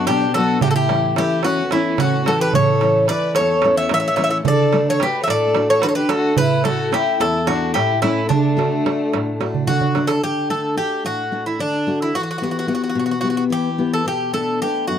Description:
greek folk, Greek bouzouki band; 218 BPM (eighths); 7/8; straight; D major; A4 = 440 Hz
Greek bouzouki; melody; 0.0-15.0 s; D4 to E5; -20 LUFS; equal
rich violin; second line; 0.0-9.6 s; A3 to C#5; -23 LUFS; left 6 dB
picked steel-string acoustic guitar; accompaniment; 0.0-15.0 s; E2 to G4; -21 LUFS; left 2 dB
darbuka; percussion; 0.1-10.2 s; -22 LUFS; right 9 dB
light reverb; dry, close 1970s-style studio recording; -16 LUFS; side -9 dB against mid
0.0-10.2 A section; 10.2-15.0 B section
drum fill 9.5-10.2
0.0 Bm; 0.6 A; 4.5 D; 6.4 A; 8.3 D; 12.1 Em; 14.1 Bm7
0.06 0.34 | 0.61 0.89 1.16 1.44 1.71 1.98 2.26 | 2.53 2.81 3.08 3.36 3.63 3.91 4.18 | 4.46 4.73 5.01 5.28 5.55 5.83 6.10 | 6.38 6.65 6.93 7.20 7.47 7.75 8.02 | 8.30 8.57 8.85 9.12 9.40 9.67 9.95 | 10.22 10.49 10.77 11.04 11.32 11.59 11.87 | 12.14 12.41 12.69 12.96 13.24 13.51 13.79 | 14.06 14.34 14.61 14.89

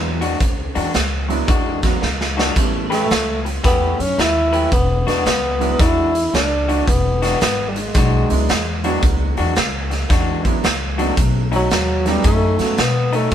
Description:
electric blues shuffle; 111 BPM; 4/4; swing 65% on 8ths; E mixolydian; A4 = 440 Hz
breathy tenor saxophone; melody; 0.0-13.3 s; E3 to E4; -19 LUFS; equal
clear upright piano; accompaniment; 0.0-12.8 s; F#3 to F#4; -24 LUFS; right 5 dB
upright bass; bass; 0.0-13.3 s; E1 to B2; -22 LUFS; equal
electric guitar through a small old amp; riff; 0.2-13.3 s; B2 to B4; -23 LUFS; left 3 dB
raw garage drum kit; drums; 0.2-13.3 s; hi-hat, kick drum, snare drum, splash cymbal; -19 LUFS; equal
little or no reverb; band playing live in one room; -15 LUFS; side -10 dB against mid
0.0-13.3 A section
drum fill 2.0-2.6
0.0 E9; 2.6 A9; 4.7 E9; 11.2 B9
| 0.40 0.94 1.48 2.02 | 2.56 3.10 3.64 4.18 | 4.72 5.26 5.80 6.34 | 6.88 7.41 7.95 8.49 | 9.03 9.56 10.10 10.64 | 11.18 11.71 12.25 12.78 | 13.32

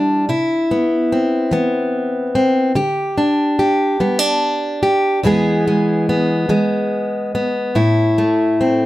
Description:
folk, solo fingerstyle acoustic guitar; 48 BPM (dotted quarters); 6/8; straight; A4 = 440 Hz
fingerpicked plugged-in steel-string acoustic guitar; solo; 0.0-8.9 s; E2 to G#4; -14 LUFS; equal
moderate studio ambience, RT60 0.5 s; -14 LUFS; side -16 dB against mid
0.0-7.8 A section; 7.8-8.9 B section
0.3 Cmaj7; 2.8 Dsus4; 5.2 E; 7.8 Am
| 0.30 1.53 | 2.77 4.01 | 5.25 6.50 | 7.76

